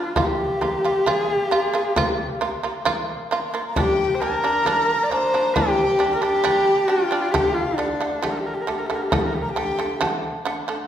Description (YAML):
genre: mongolian traditional, Mongolian folk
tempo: 67 BPM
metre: 4/4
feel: straight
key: G minor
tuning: A4 = 440 Hz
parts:
  - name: rich horsehead fiddle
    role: melody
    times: 0.0-10.0 s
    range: D4 to D5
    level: -22 LUFS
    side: left 1 dB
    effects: none
  - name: shamisen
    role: arpeggios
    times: 0.0-10.9 s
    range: D3 to F4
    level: -24 LUFS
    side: right 3 dB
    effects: none
  - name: frame drum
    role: percussion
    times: 0.2-10.2 s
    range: none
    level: -28 LUFS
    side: left 1 dB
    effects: none
  - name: bright reedy large dizi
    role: second line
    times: 3.7-10.0 s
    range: D5 to Bb5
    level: -26 LUFS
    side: left 1 dB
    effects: none
room: wet recital hall reverb, RT60 1.6 s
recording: recorded in a church or concert hall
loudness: -19 LUFS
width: side -10 dB against mid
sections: 0.0-3.8 A section; 3.8-10.9 B section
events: none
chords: 0.2 Bb5; 3.8 G5; 7.3 D5